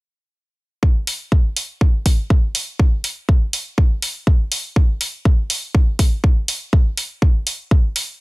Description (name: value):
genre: piano house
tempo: 122 BPM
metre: 4/4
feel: swing 56% on 16ths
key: none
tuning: none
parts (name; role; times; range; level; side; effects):
- electronic kick drum; drums; 0.8-7.8 s; none; -14 LUFS; equal; none
- electronic hi-hat; drums; 1.1-8.1 s; none; -22 LUFS; equal; none
room: little or no reverb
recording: dense, heavily limited modern master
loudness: -16 LUFS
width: side -23 dB against mid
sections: 0.8-8.2 A section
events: none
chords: none